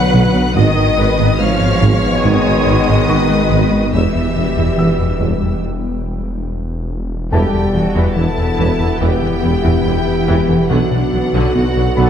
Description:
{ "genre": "cinematic, hybrid orchestral and electronic film score", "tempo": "71 BPM", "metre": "4/4", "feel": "straight", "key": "E dorian", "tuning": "A4 = 441 Hz", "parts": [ { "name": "clear studio violin section", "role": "melody", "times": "0.0-12.1 s", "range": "F#5 to F#6", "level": "-26 LUFS", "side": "left 2 dB", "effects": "none" }, { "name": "clear symphonic violin section", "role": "second line", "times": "0.0-12.1 s", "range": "B3 to F#5", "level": "-24 LUFS", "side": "left 5 dB", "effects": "none" }, { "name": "rich symphonic viola section", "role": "accompaniment", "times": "0.0-12.1 s", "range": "D3 to D#5", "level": "-23 LUFS", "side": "right 1 dB", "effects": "none" }, { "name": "ethereal airy pad", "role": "sustained chords", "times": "0.0-12.1 s", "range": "D3 to G5", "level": "-23 LUFS", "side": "left 1 dB", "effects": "ensemble chorus, built-in reverb, phaser" }, { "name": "mellow French horn section", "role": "sustained chords", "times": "0.0-12.1 s", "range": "G3 to A4", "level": "-22 LUFS", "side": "left 2 dB", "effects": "none" }, { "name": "warm trombone section", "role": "sustained chords", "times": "0.0-12.1 s", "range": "B2 to B3", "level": "-26 LUFS", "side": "right 4 dB", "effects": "none" }, { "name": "round analog bass", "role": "riff", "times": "0.0-12.1 s", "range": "E2 to B3", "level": "-19 LUFS", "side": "left 2 dB", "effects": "none" }, { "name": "rich symphonic cello section", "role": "bass", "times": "0.0-12.1 s", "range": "D#3 to A4", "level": "-22 LUFS", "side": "right 3 dB", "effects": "none" }, { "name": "swelling detuned saw bass", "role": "bass", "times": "0.0-12.1 s", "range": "E1 to B1", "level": "-22 LUFS", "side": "equal", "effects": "none" }, { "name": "rich symphonic double bass section", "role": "bass", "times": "0.1-12.0 s", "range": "G#1 to E2", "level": "-21 LUFS", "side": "right 3 dB", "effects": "none" }, { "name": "warm tuba", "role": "bass", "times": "0.1-12.1 s", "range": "E1 to B1", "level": "-22 LUFS", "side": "right 4 dB", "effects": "none" }, { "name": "felt-muted upright piano", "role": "texture", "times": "3.1-12.1 s", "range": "A4 to E6", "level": "-29 LUFS", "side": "left 1 dB", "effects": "none" } ], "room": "moderate scoring stage reverb, RT60 1.7 s", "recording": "dark, warm production", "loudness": "-12 LUFS", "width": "side -8 dB against mid", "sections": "0.0-7.3 A section; 7.3-12.1 A section", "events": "break 5.6-7.3", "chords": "0.0 Bm; 0.6 G#m; 3.9 Em; 10.7 Bm" }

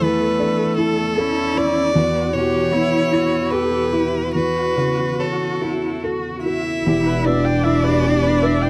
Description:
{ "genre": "neoclassical piano and strings", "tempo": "70-79 BPM", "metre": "3/4", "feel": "rubato", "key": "E dorian", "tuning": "A4 = 440 Hz", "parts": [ { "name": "clear violin", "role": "melody", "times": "0.0-8.7 s", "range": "A4 to E5", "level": "-24 LUFS", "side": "equal", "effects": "none" }, { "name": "rich cello", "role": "second line", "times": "0.0-8.7 s", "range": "A3 to G4", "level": "-25 LUFS", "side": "equal", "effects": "none" }, { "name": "warm upright piano", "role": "accompaniment", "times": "0.0-8.7 s", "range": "E2 to B4", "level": "-24 LUFS", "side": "equal", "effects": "none" }, { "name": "warm viola", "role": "accompaniment", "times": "0.0-8.7 s", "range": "E4 to G5", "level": "-28 LUFS", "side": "equal", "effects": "none" }, { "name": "marimba with medium mallets", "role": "arpeggios", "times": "6.9-8.7 s", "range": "E4 to E5", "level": "-30 LUFS", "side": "equal", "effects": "none" }, { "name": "warm double bass", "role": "bass", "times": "6.9-8.7 s", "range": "E1", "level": "-24 LUFS", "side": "equal", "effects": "none" } ], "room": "light reverb", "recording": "dry, close 1970s-style studio recording", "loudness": "-19 LUFS", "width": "mono", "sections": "0.0-6.9 A section; 6.9-8.7 A section", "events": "none", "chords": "0.0 Asus4/E; 2.0 Em; 4.3 F#m/E; 6.9 Em" }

